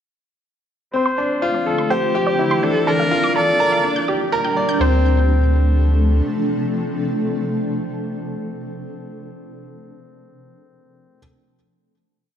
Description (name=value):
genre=piano and strings electronica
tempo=124 BPM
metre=4/4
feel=straight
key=D minor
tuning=A4 = 436 Hz
part: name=bright viola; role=melody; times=0.9-4.0 s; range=G4 to D5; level=-20 LUFS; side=equal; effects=low-pass filter, digital delay
part: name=granular cloud pad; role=sustained chords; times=1.4-9.2 s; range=Bb2 to A4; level=-23 LUFS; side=equal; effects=built-in reverb
part: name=bright grand piano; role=riff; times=0.9-11.2 s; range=C4 to D5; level=-22 LUFS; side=left 2 dB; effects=digital delay
part: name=warm sub bass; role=bass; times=0.9-6.2 s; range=Bb1 to D2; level=-14 LUFS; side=equal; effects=high-pass filter
part: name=wide unison pluck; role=arpeggios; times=1.1-5.0 s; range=C5 to G6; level=-27 LUFS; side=right 3 dB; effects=digital delay
room=moderate scoring stage reverb, RT60 1.5 s, small room ambience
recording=dark, warm production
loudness=-16 LUFS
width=side -9 dB against mid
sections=0.9-4.8 build; 4.8-8.7 final chord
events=build-up 0.9-4.8; filter sweep on ambient pad 0.9-4.8; filter sweep on synth arpeggio sound 0.9-4.8; filter sweep on viola 0.9-4.8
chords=0.9 Dm7; 1.9 Cadd9; 2.9 Bbmaj7; 3.8 Gm/Bb; 4.8 Dm7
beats=| 0.94 1.42 1.90 2.39 | 2.87 3.36 3.84 4.32 | 4.81 5.29 5.78 6.26 | 6.74 7.23 7.71 8.19